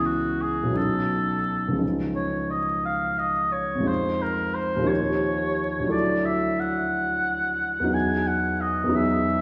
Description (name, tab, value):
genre	classical, impressionist duo for oboe and grand piano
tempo	58 BPM (dotted quarters)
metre	6/8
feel	rubato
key	unclear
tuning	A4 = 440 Hz
part	warm oboe	melody	0.0-9.4 s	F#4 to G#5	-28 LUFS	equal	none
part	dark baby grand piano	accompaniment	0.0-9.4 s	B1 to A4	-27 LUFS	equal	none
room	wet scoring stage reverb, RT60 1.5 s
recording	heard from further back in the room, vinyl crackle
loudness	-25 LUFS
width	mono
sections	0.0-9.4 A section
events	none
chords	0.0 C#m7; 0.8 B9; 1.8 C#add9; 3.9 Fm7; 4.9 D#9; 5.9 Dadd9; 7.9 Emaj9